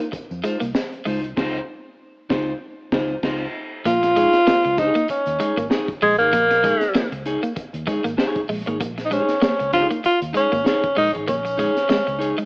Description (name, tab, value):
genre	funk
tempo	97 BPM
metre	4/4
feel	swing 56% on 16ths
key	Bb minor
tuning	A4 = 440 Hz
part	clean electric guitar	accompaniment	0.0-12.4 s	Eb4 to Db5	-26 LUFS	left 1 dB	cassette tape
part	clean electric guitar	riff	0.0-12.5 s	Ab3 to Bb3	-27 LUFS	right 1 dB	analog chorus, cassette tape
part	crunchy breakbeat drum kit	drums	0.0-12.5 s	crash cymbal, hi-hat, kick drum, snare drum	-25 LUFS	equal	cassette tape
part	tambourine	percussion	0.0-12.5 s	none	-46 LUFS	equal	none
part	vintage muted fingered electric bass	bass	0.1-12.3 s	Ab1 to F2	-33 LUFS	equal	none
part	warm tenor saxophone	melody	3.9-12.5 s	Ab3 to F4	-18 LUFS	equal	cassette tape
room	light reverb, small room ambience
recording	home recording on cassette, AM radio sound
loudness	-18 LUFS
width	side -30 dB against mid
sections	0.0-3.9 A section; 3.9-12.5 B section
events	band accent 1.4-3.9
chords	0.0 Dbmaj9; 3.9 Bbm7